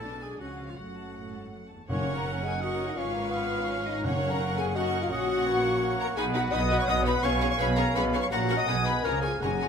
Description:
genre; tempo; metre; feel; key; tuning
quick classical-period movement for symphony orchestra; 167 BPM; 3/4; straight; F# major; A4 = 440 Hz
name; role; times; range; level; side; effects
rich studio violin section; melody; 0.0-9.7 s; B4 to D#6; -37 LUFS; left 2 dB; none
clear studio violin section; second line; 0.0-9.7 s; E#5 to C#6; -38 LUFS; equal; none
mellow clarinet; second line; 0.0-9.7 s; E#4 to A#5; -36 LUFS; left 1 dB; none
rich studio viola section; accompaniment; 0.0-9.7 s; A3 to B4; -36 LUFS; right 3 dB; none
mellow French horn section; sustained chords; 0.0-9.7 s; E#3 to D#5; -31 LUFS; left 4 dB; none
dark studio cello section; bass; 0.0-9.7 s; E2 to C#3; -35 LUFS; right 1 dB; none
rich studio double bass section; bass; 0.0-9.7 s; F#1 to C#2; -34 LUFS; right 3 dB; none
hollow small flute group; second line; 1.9-9.7 s; C#5 to D#6; -35 LUFS; left 3 dB; none
warm oboe; second line; 1.9-9.7 s; B4 to A#5; -36 LUFS; right 2 dB; none
mellow bassoon; accompaniment; 1.9-9.7 s; E#3 to D#4; -38 LUFS; right 2 dB; none
timpani; percussion; 1.9-4.5, 9.4-9.7 s; F#2; -34 LUFS; equal; none
room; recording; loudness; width
moderate recital hall reverb, RT60 1.4 s; none; -24 LUFS; side -6 dB against mid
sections
0.0-1.9 A section; 1.9-9.7 A section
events
none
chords
0.0 G#dim/B; 0.4 C#; 0.8 F#m; 1.9 F#; 3.0 C#7/G#; 4.1 F#; 5.1 F#/A#; 6.2 B; 7.2 C#7/B; 8.3 F#/A#; 8.7 G#m/B; 9.0 C#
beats
0.04 0.41 | 0.78 1.16 1.53 | 1.89 2.26 2.62 | 2.98 3.33 3.69 | 4.05 4.41 4.76 | 5.12 5.47 5.83 | 6.18 6.54 6.89 | 7.24 7.60 7.96 | 8.32 8.68 9.04 | 9.42

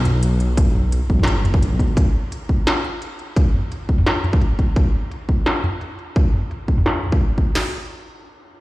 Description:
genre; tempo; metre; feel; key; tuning
half-time drum and bass; 172 BPM; 4/4; swing 53% on 16ths, half-time; E minor; A4 = 439 Hz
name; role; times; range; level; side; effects
dark detuned saw bass; bass; 0.0-2.0 s; G1 to B1; -18 LUFS; equal; none
industrial drum kit; drums; 0.1-7.5 s; hi-hat, snare drum, toms; -23 LUFS; equal; low-pass filter on hats, low-pass filter on perc, low-pass filter on cymbals, low-pass filter on snare, low-pass filter on toms, low-pass filter on room
industrial drum kit; drums; 0.6-7.6 s; crash cymbal, kick drum, snare drum; -17 LUFS; equal; none
room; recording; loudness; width
little or no reverb; played on a big sound system in a bare room, stone room reverb; -17 LUFS; side -19 dB against mid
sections
0.0-7.5 A section; 7.5-8.6 B section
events
filter sweep on drum 0.0-7.5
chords
none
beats
0.23 | 0.57 0.92 1.27 1.62 | 1.97 2.32 2.67 3.02 | 3.36 3.71 4.06 4.41 | 4.76 5.11 5.46 5.81 | 6.16 6.50 6.85 7.20 | 7.55

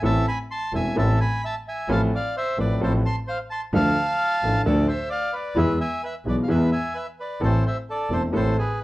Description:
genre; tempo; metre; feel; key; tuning
tango; 130 BPM; 4/4; rubato; A harmonic minor; A4 = 440 Hz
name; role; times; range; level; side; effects
bandoneon; melody; 0.0-8.8 s; G#4 to C6; -26 LUFS; equal; none
warm concert grand piano; accompaniment; 0.0-8.5 s; E1 to A4; -24 LUFS; left 1 dB; none
clear double bass; bass; 0.0-8.5 s; E1 to E2; -24 LUFS; equal; none
room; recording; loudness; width
moderate studio reverb, RT60 0.5 s; worn, warbling old tape, cassette tape, warbly pitch drift; -21 LUFS; side -18 dB against mid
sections
0.0-8.8 A section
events
none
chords
0.0 Am; 1.9 F/A; 5.6 E; 7.4 Am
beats
| 0.03 0.50 0.97 1.43 | 1.89 2.35 2.81 3.27 | 3.73 4.19 4.64 5.10 | 5.56 6.02 6.49 6.95 | 7.42 7.88 8.35 8.81

